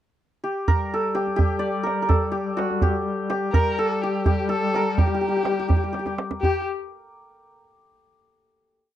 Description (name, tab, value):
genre	Persian modal ensemble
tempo	84 BPM (dotted quarters)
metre	6/8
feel	straight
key	G avaz esfahan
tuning	A4 = 440 Hz
part	santur	melody	0.4-7.6 s	F#4 to D5	-25 LUFS	equal	none
part	warm duduk	drone	0.7-6.5 s	G3	-29 LUFS	left 4 dB	stereo widening
part	tombak	percussion	0.7-6.6 s	none	-22 LUFS	right 2 dB	none
part	clear kamancheh	second line	3.5-6.6 s	G4 to Bb4	-26 LUFS	left 4 dB	slapback echo
room	light reverb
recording	dry, close 1970s-style studio recording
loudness	-21 LUFS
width	side -12 dB against mid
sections	0.0-0.7 pickup bar; 0.7-6.4 A section; 6.4-7.8 final note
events	drum fill 5.9-6.4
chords	none